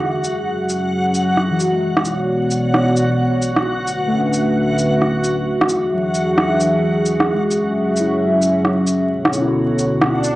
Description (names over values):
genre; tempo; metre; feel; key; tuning
future garage; 132 BPM; 4/4; swing 64% on 16ths; F# minor; A4 = 440 Hz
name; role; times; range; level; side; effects
muted felt-like synth keys; accompaniment; 0.0-10.4 s; D3 to F#4; -23 LUFS; left 2 dB; chorus, phaser, analog delay
dark analog pad; sustained chords; 0.0-10.4 s; B2 to E5; -18 LUFS; equal; chorus
backwards swelling texture; texture; 0.0-10.4 s; F#4 to F#5; -24 LUFS; equal; built-in reverb
electronic cabasa and rim click; drums; 0.2-10.4 s; none; -20 LUFS; equal; overdrive, cassette tape
swell; sound effects; 10.1-10.4 s; none; -22 LUFS; right 2 dB; none
room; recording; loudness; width
moderate spring reverb, RT60 2.1 s; home recording on cassette, vinyl crackle, nothing above 10.4 kHz; -15 LUFS; side -17 dB against mid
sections
0.0-10.4 A section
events
swell 10.1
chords
0.0 F#sus2; 1.8 Bmadd9; 3.7 D69; 5.5 E7; 7.3 F#sus2; 9.1 Bm9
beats
| 0.02 0.47 0.93 1.38 | 1.84 2.29 2.75 3.20 | 3.65 4.11 4.56 5.02 | 5.47 5.93 6.38 6.84 | 7.29 7.75 8.20 8.65 | 9.11 9.56 10.02